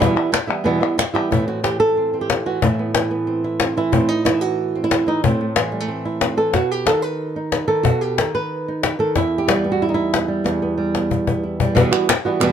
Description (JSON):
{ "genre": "flamenco", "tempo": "184 BPM", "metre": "4/4", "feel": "straight", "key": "unclear", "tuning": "A4 = 441 Hz", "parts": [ { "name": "flamenco guitar", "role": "melody", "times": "0.0-12.5 s", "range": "E2 to B4", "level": "-18 LUFS", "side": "right 2 dB", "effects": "plate reverb" }, { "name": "cajon", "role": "percussion", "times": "0.0-12.4 s", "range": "none", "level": "-19 LUFS", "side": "left 6 dB", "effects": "none" }, { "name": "palmas hand claps", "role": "percussion", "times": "0.2-1.3, 11.9-12.5 s", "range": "none", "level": "-22 LUFS", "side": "equal", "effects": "none" } ], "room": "light reverb", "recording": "none", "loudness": "-17 LUFS", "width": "side -8 dB against mid", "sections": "0.0-1.3 A section; 1.3-11.8 B section", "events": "drum fill 10.5-11.8", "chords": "0.0 Em; 1.3 Amadd9; 6.5 B; 9.2 Em; 11.8 Emadd9", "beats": "| 0.01 0.34 0.66 0.99 | 1.32 1.64 1.97 2.30 | 2.62 2.95 3.28 3.60 | 3.93 4.26 4.58 4.91 | 5.24 5.56 5.89 6.22 | 6.54 6.87 7.20 7.52 | 7.85 8.18 8.50 8.83 | 9.16 9.48 9.81 10.14 | 10.46 10.79 11.11 11.44 | 11.77 12.09 12.42" }